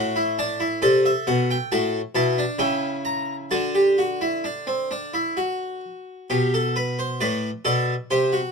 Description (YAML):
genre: classical, baroque-style 3-part fugue for harpsichord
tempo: 64-68 BPM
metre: 3/4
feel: straight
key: G major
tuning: A4 = 440 Hz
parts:
  - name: harpsichord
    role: solo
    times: 0.0-8.5 s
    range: A2 to A#5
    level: -21 LUFS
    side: equal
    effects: none
room: light reverb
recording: close, detailed microphones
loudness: -20 LUFS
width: side -5 dB against mid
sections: 0.0-6.3 A section; 6.3-8.5 B section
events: none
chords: 0.0 Dadd9/A; 0.8 Am; 2.6 C#dim7; 3.5 D; 6.3 G/B